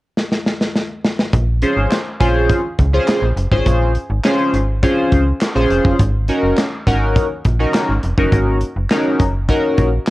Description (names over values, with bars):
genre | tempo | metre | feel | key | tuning
early-eighties boogie funk | 103 BPM | 4/4 | straight | Bb minor | A4 = 438 Hz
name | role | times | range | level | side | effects
modern studio drum kit | drums | 0.2-10.1 s | handclaps, hi-hat, kick drum, snare drum | -18 LUFS | equal | cassette tape
slap-like FM bass | bass | 1.3-10.0 s | F1 to Db2 | -17 LUFS | equal | none
chorused polysynth | accompaniment | 1.6-9.9 s | Db4 to C5 | -17 LUFS | equal | phaser, cassette tape
room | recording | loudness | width
light reverb, small room reverb | home recording on cassette | -14 LUFS | side -18 dB against mid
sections
0.0-1.3 A section; 1.3-10.1 B section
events
drum fill 0.2-1.3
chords
0.0 N.C.; 1.3 Bbm7; 6.0 Ab7sus4